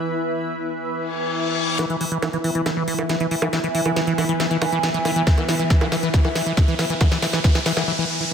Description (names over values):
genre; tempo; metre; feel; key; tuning
psychedelic trance; 138 BPM; 4/4; straight; unclear; A4 = 439 Hz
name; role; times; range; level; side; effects
overtone-sweeping drone; sustained chords; 0.0-7.9 s; E3; -26 LUFS; right 1 dB; chorus, built-in reverb, phaser, sidechain pumping
granular cloud pad; texture; 0.0-7.9 s; E4 to E5; -28 LUFS; left 1 dB; built-in reverb, sidechain pumping
reverse cymbal and riser; sound effects; 1.1-8.3 s; none; -30 LUFS; left 2 dB; none
liquid acid bass; riff; 1.8-8.3 s; E3; -23 LUFS; left 1 dB; chorus, auto-pan, sidechain pumping, ping-pong delay
drum and bass drum kit; drums; 1.8-7.9 s; bongos, hi-hat, snare drum; -26 LUFS; right 2 dB; high-pass filter on snare, high-pass filter on hats, high-pass filter on perc, high-pass filter on room
electronic kick drum; drums; 5.3-7.5 s; none; -17 LUFS; equal; none
room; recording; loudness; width
moderate lush hall reverb, RT60 1.8 s, digital ambience; none; -18 LUFS; side -7 dB against mid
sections
0.0-1.8 A section; 1.8-8.3 B section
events
reverse cymbal 1.1-1.8; build-up 1.8-8.3; drum fill 1.8-7.9; riser 1.8-8.3; filter sweep on acid bass 1.8-8.3; break 7.9-8.3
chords
0.0 E5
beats
| 0.05 0.49 0.92 1.35 | 1.79 2.23 2.66 3.10 | 3.53 3.96 4.40 4.83 | 5.27 5.70 6.14 6.57 | 7.01 7.44 7.88 8.31